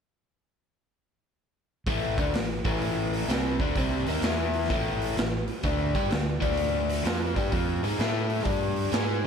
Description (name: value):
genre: blues rock power trio and southern rock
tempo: 128 BPM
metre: 4/4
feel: swing 66% on 8ths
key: unclear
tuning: A4 = 440 Hz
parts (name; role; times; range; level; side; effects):
- overdriven electric guitar; riff; 1.9-9.3 s; A2 to A4; -27 LUFS; left 2 dB; none
- overdriven fingered electric bass; bass; 1.9-9.3 s; A1 to A2; -32 LUFS; right 1 dB; none
- raw garage drum kit; drums; 1.9-9.3 s; hi-hat, kick drum, snare drum; -29 LUFS; right 1 dB; none
room: moderate lush hall reverb, RT60 1.7 s, studio ambience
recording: big arena sound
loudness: -25 LUFS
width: side -7 dB against mid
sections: 1.9-9.3 A section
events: none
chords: 1.9 A5; 4.2 E5; 4.7 A5; 5.6 D5; 8.0 A5; 8.5 G5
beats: | 1.87 2.34 2.81 3.28 | 3.75 4.22 4.69 5.17 | 5.64 6.11 6.58 7.05 | 7.52 7.99 8.46 8.93